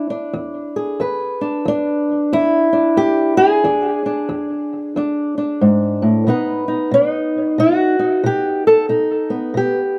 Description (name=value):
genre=acoustic country blues, solo or duo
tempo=91 BPM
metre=4/4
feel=swing 62% on 8ths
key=E mixolydian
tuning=A4 = 440 Hz
part: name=fingerpicked old ladder-braced acoustic guitar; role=solo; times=0.0-10.0 s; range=E2 to B4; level=-17 LUFS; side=equal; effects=none
room=moderate studio ambience, RT60 0.5 s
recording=none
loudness=-17 LUFS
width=mono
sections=0.0-10.0 A section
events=none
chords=0.0 E7; 6.3 B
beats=0.34 | 1.00 1.66 2.32 2.98 | 3.63 4.29 4.95 5.61 | 6.26 6.92 7.57 8.23 | 8.88 9.54